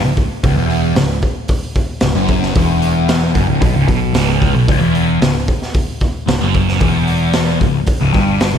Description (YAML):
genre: psychedelic rock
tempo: 113 BPM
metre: 4/4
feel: straight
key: C# minor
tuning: A4 = 440 Hz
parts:
  - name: thick fuzz guitar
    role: riff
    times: 0.0-8.6 s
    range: C#2 to B2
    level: -15 LUFS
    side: equal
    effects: distortion, phaser
  - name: picked electric bass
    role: bass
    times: 0.0-8.6 s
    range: C#1 to B1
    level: -19 LUFS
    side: equal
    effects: none
  - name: raw garage drum kit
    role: drums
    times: 0.2-8.5 s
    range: hi-hat, kick drum, snare drum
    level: -17 LUFS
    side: equal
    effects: none
room: light reverb, small room ambience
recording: none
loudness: -12 LUFS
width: side -8 dB against mid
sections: 0.0-8.6 A section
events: none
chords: 0.0 C#m